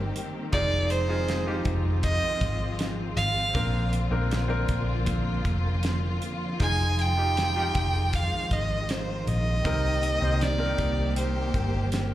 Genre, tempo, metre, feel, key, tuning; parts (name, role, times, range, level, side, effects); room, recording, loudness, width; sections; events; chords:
pop ballad; 79 BPM; 4/4; straight; A4 = 440 Hz
rich violin; melody; 0.0-12.1 s; C5 to Ab5; -29 LUFS; right 2 dB; slapback echo
clear concert grand piano; accompaniment; 0.0-12.1 s; Bb2 to C5; -34 LUFS; left 1 dB; slapback echo
warm symphonic string section; sustained chords; 0.0-12.1 s; D3 to G4; -32 LUFS; left 1 dB
vintage muted fingered electric bass; bass; 0.0-12.1 s; F1 to C2; -27 LUFS; equal
damped 70s drum kit; drums; 0.2-12.1 s; hi-hat, kick drum, snare drum; -30 LUFS; equal
light reverb; live gig heard through the venue's PA, club reverb; -24 LUFS; side -14 dB against mid
0.0-12.1 A section
0.0 Cm7; 0.5 Fm7; 3.5 Bbadd9; 6.6 Fm7; 9.7 Cm7